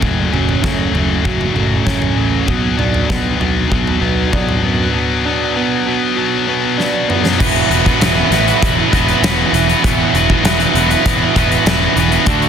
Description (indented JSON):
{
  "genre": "quiet-loud alternative rock",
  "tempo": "98 BPM",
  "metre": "4/4",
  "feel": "straight",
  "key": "unclear",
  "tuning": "A4 = 440 Hz",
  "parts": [
    { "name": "electric guitar through a small old amp", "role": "arpeggios", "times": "0.0-7.4 s", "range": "F#2 to D4", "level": "-20 LUFS", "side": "right 6 dB", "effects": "wide subtle chorus" },
    { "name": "scooped high-gain guitar", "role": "riff", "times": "0.0-12.5 s", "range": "F#2 to B4", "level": "-16 LUFS", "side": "left 8 dB", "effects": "distortion" },
    { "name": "fuzz picked electric bass", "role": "bass", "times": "0.0-12.5 s", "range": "E1 to F#2", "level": "-19 LUFS", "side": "equal", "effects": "overdrive" },
    { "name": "huge arena drum kit", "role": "drums", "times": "0.0-12.5 s", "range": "crash cymbal, hi-hat, kick drum, snare drum, toms", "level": "-18 LUFS", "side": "equal", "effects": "soft clipping on kick, soft clipping on snare" },
    { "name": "thick fuzz guitar", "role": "riff", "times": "7.4-12.5 s", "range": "D3 to B4", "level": "-17 LUFS", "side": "right 14 dB", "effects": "distortion" }
  ],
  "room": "light reverb, small room reverb",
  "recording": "dense, heavily limited modern master",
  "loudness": "-12 LUFS",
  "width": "side -8 dB against mid",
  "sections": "0.0-7.4 A section; 7.4-12.5 B section",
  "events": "drum fill 6.8-7.4",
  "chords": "0.0 F#m; 2.5 Bm; 7.4 Esus2",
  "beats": "| 0.02 0.63 1.25 1.86 | 2.48 3.09 3.71 4.32 | 4.94 5.55 6.16 6.78 | 7.39 8.00 8.61 9.22 | 9.83 10.44 11.05 11.65 | 12.26"
}